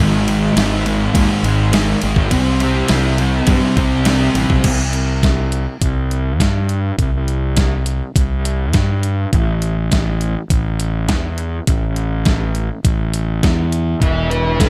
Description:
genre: rock, shoegaze and dream pop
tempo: 103 BPM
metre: 4/4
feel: straight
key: unclear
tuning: A4 = 440 Hz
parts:
  - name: thick fuzz guitar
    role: riff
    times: 0.0-4.6, 14.0-14.7 s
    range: Ab2 to B4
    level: -19 LUFS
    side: equal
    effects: distortion, subtle chorus
  - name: fuzz fingered electric bass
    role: bass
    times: 0.0-14.7 s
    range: E1 to G2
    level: -20 LUFS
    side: equal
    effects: overdrive
  - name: detuned 8-bit digital drum machine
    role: drums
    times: 0.3-14.7 s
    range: crash cymbal, hi-hat, kick drum, ride cymbal, snare drum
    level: -20 LUFS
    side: equal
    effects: none
room: little or no reverb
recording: none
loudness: -17 LUFS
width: mono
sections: 0.0-4.6 A section; 4.6-14.7 B section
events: none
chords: 0.0 Ab5; 2.3 C5; 9.3 A5; 14.0 Esus4

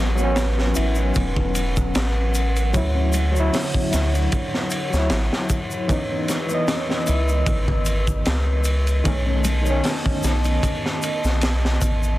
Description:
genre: trip hop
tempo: 76 BPM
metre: 4/4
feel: swing 54% on 16ths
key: C# minor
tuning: A4 = 435 Hz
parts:
  - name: overdriven reed electric piano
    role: accompaniment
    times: 0.0-12.2 s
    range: D#3 to D#5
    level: -27 LUFS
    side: equal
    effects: tremolo, tape echo
  - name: dark analog pad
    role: sustained chords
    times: 0.0-12.2 s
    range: D3 to E6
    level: -29 LUFS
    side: right 1 dB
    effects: chorus
  - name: nylon-string guitar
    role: arpeggios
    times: 0.0-11.2 s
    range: G#3 to C#5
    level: -30 LUFS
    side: left 1 dB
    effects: tape echo
  - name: round analog bass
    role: bass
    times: 0.0-12.2 s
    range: E1 to D2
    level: -21 LUFS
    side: equal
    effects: none
  - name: tube shaker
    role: percussion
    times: 0.2-12.2 s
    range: none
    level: -34 LUFS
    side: left 2 dB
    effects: none
  - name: crunchy breakbeat drum kit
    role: drums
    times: 0.4-12.0 s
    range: hi-hat, kick drum, ride cymbal, snare drum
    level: -24 LUFS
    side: equal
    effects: none
room: small room ambience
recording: dense, heavily limited modern master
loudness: -19 LUFS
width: side -16 dB against mid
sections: 0.0-12.2 A section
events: none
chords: 0.0 A69; 2.7 Dmaj7; 5.9 C#m9; 9.1 B7

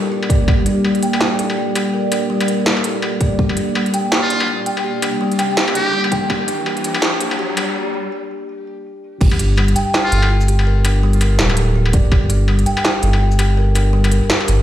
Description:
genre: half-time drum and bass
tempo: 165 BPM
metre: 4/4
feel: swing 58% on 16ths, half-time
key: G minor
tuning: A4 = 441 Hz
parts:
  - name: deep dark ambient pad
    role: sustained chords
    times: 0.0-7.8 s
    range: G3 to D5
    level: -22 LUFS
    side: equal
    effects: chorus, built-in reverb, sidechain pumping
  - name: kalimba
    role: arpeggios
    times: 0.0-14.6 s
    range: G3 to G5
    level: -22 LUFS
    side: equal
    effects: vintage 12-bit sampler grit, ping-pong delay
  - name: industrial drum kit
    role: drums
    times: 0.2-14.6 s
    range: crash cymbal, hi-hat, shaker, snare drum, struck metal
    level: -21 LUFS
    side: equal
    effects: none
  - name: electronic kick drum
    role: drums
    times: 0.3-0.6, 3.2-3.5, 6.1-6.4, 9.2-9.3, 11.9-12.2 s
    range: none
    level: -16 LUFS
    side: equal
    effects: none
  - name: riser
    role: sound effects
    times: 4.5-7.8 s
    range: none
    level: -27 LUFS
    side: left 1 dB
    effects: none
  - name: trumpet with metal mute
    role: melody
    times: 4.2-6.0, 10.0-10.3 s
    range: F4 to G4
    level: -24 LUFS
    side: equal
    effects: vintage 12-bit sampler grit, low-pass filter, ping-pong delay
  - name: saturated sub bass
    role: bass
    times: 9.2-14.6 s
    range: D1 to G1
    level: -14 LUFS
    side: equal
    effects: none
room: moderate digital room reverb, RT60 1.1 s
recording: played on a big sound system in a bare room, stone room reverb, high-pass filter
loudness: -14 LUFS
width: side -12 dB against mid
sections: 0.0-9.2 A section; 9.2-14.6 B section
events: build-up 0.0-9.2; filter sweep on muted trumpet 0.0-9.2; filter sweep 0.0-9.2; riser 4.5-7.8; break 7.8-9.2; drop 9.2-14.6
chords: 0.0 Gm

